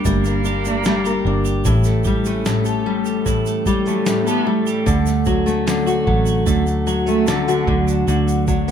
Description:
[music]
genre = acoustic pop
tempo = 75 BPM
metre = 4/4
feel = straight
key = D major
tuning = A4 = 439 Hz
[part]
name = warm cello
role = second line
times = 0.0-7.9 s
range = D3 to B3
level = -24 LUFS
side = right 6 dB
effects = none
[part]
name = fingerpicked steel-string acoustic guitar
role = accompaniment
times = 0.0-8.7 s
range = A2 to Bb4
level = -19 LUFS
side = left 4 dB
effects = none
[part]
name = twelve-string electric guitar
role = arpeggios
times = 0.0-8.7 s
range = E3 to G4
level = -25 LUFS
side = right 7 dB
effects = none
[part]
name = vintage muted fingered electric bass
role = bass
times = 0.0-8.7 s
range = G1 to D2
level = -21 LUFS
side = right 1 dB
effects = none
[part]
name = dusty soul sampler-style drum kit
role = drums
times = 0.1-8.7 s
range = kick drum, shaker, snare drum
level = -24 LUFS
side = right 1 dB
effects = none
[part]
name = tube shaker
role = percussion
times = 0.1-8.7 s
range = none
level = -35 LUFS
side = right 10 dB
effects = none
[sound]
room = moderate small room ambience, RT60 0.5 s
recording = none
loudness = -16 LUFS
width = side -8 dB against mid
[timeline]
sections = 0.0-8.7 A section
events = none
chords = 0.0 Gm; 1.7 A7; 4.9 Dmaj7; 7.7 Bmadd9/D (rootless)

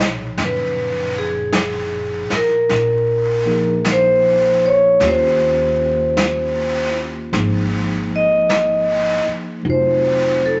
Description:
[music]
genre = jazz ballad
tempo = 52 BPM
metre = 4/4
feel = swing 66% on 8ths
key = Ab major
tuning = A4 = 440 Hz
[part]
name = mellow tine electric piano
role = accompaniment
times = 0.0-10.6 s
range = A#2 to C#5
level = -27 LUFS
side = equal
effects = none
[part]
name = upright bass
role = bass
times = 0.0-10.6 s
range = F1 to Eb2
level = -28 LUFS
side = equal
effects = none
[part]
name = vintage brush drum kit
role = drums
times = 0.0-10.6 s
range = brushed snare drum, hi-hat, snare drum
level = -27 LUFS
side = equal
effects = none
[part]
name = vibraphone with medium hard mallets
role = melody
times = 0.4-10.6 s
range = Ab4 to Eb5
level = -18 LUFS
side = equal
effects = none
[sound]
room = moderate large studio reverb, RT60 0.9 s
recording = vinyl crackle, nothing above 7.9 kHz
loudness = -17 LUFS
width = mono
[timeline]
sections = 0.0-10.6 A section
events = none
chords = 0.0 Bmaj9; 2.7 Bb5; 5.0 Eb13; 7.3 Ab69; 9.6 F5

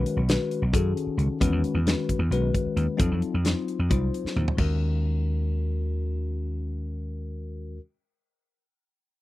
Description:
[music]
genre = electric jazz fusion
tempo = 265 BPM (eighths)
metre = 7/8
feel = straight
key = Eb dorian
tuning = A4 = 439 Hz
[part]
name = bell-like tine electric piano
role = accompaniment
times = 0.0-7.8 s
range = D#3 to C5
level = -29 LUFS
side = left 4 dB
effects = phaser
[part]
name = vintage slap bass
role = bass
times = 0.0-7.8 s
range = B1 to F#2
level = -26 LUFS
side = equal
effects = none
[part]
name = modern studio drum kit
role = drums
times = 0.1-4.7 s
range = crash cymbal, hi-hat, kick drum, snare drum, toms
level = -26 LUFS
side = equal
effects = none
[sound]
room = little or no reverb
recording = dry, close 1970s-style studio recording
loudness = -23 LUFS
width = side -16 dB against mid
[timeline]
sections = 0.0-4.6 A section; 4.6-7.7 B section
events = drum fill 4.2-4.6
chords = 0.0 B13; 1.4 Emaj13; 3.0 F7b9; 4.6 Ebm7

